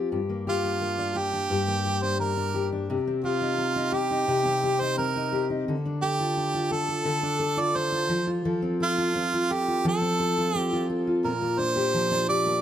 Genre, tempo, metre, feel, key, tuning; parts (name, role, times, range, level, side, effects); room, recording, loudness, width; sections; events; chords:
pop; 86 BPM; 4/4; straight; A4 = 440 Hz
fingerpicked steel-string acoustic guitar; accompaniment; 0.0-12.6 s; G2 to A4; -26 LUFS; left 2 dB
clear harmonica; melody; 0.5-12.6 s; F4 to D5; -26 LUFS; right 3 dB
light reverb; -23 LUFS; side -10 dB against mid
0.1-11.2 A section; 11.2-12.6 B section
0.1 Gm; 2.9 Cm; 5.7 Dm; 8.1 F; 11.2 Bb6